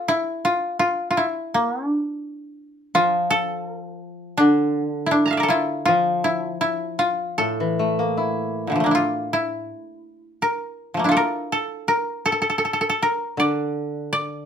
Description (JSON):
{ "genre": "japanese traditional, Japanese chamber music", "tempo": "82 BPM", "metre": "4/4", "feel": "rubato", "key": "D hirajoshi", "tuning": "A4 = 442 Hz", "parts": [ { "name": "koto", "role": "melody", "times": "0.0-14.5 s", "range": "Bb2 to Bb5", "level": "-20 LUFS", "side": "equal", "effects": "none" }, { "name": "koto", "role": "accompaniment", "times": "3.0-14.5 s", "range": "A2 to E4", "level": "-24 LUFS", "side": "equal", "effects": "none" } ], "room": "light reverb", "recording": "minimal, uncompressed stereo recording", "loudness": "-20 LUFS", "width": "side -8 dB against mid", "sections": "0.0-14.5 A section", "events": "none", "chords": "none" }